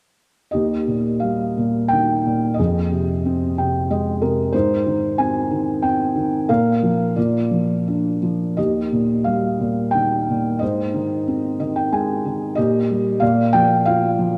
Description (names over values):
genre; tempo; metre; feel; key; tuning
classical, lyrical solo piano; 84-94 BPM; 3/4; rubato; Eb major; A4 = 439 Hz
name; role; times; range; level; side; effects
felt-muted upright piano; solo; 0.5-14.4 s; Eb2 to Ab5; -20 LUFS; equal; none
room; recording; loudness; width
moderate plate reverb, RT60 3.4 s; heard from further back in the room; -20 LUFS; mono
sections
0.5-14.4 A section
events
felt piano fill 3.2-4.5, 11.3-12.6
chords
0.5 Eb; 2.6 Fm7; 4.5 Ab; 6.5 Bb5; 7.2 Bb; 8.6 Eb; 10.6 Ab; 12.6 Eb/Bb; 13.2 Bb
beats
| 0.54 1.23 1.92 | 2.59 3.25 3.90 | 4.54 5.18 5.82 | 6.49 7.17 7.87 | 8.58 9.27 9.94 | 10.62 11.27 11.92 | 12.57 13.21 13.86